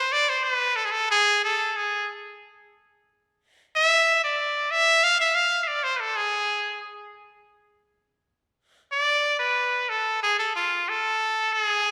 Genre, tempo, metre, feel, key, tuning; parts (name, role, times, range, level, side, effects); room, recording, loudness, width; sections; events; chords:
klezmer; 92 BPM; 2/4; straight; D dorian sharp4; A4 = 440 Hz
cornet with straight mute; solo; 0.0-6.8, 8.9-11.9 s; F4 to F5; -23 LUFS; equal
wet recital hall reverb, RT60 1.8 s; recorded in a church or concert hall; -23 LUFS; mono
0.0-8.9 A section; 8.9-11.9 B section
cornet solo 0.0-8.9